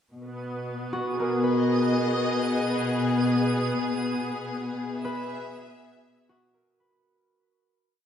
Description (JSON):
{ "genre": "ambient", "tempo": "73 BPM", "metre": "4/4", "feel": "straight", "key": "B major", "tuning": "A4 = 440 Hz", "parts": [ { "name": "rich studio string section", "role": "sustained chords", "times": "0.1-6.7 s", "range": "B2 to E5", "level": "-25 LUFS", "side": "left 2 dB", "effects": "low-pass filter" }, { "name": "twinkling granular texture", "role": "texture", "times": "0.4-6.7 s", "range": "D#6", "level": "-37 LUFS", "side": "right 2 dB", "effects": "built-in reverb" }, { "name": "concert harp", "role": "arpeggios", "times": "0.9-8.1 s", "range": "F#4 to B4", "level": "-30 LUFS", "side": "right 3 dB", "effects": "diffuse ambient delay" } ], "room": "wet concert hall reverb, RT60 2.5 s", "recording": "none", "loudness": "-24 LUFS", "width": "side -8 dB against mid", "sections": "0.1-6.7 A section", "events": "filter sweep on string section 0.1-6.7; fade-out 3.4-6.7", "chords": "0.1 B6; 3.4 E/B", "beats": "| 0.12 0.94 1.76 2.59 | 3.41 4.23 5.05 5.88" }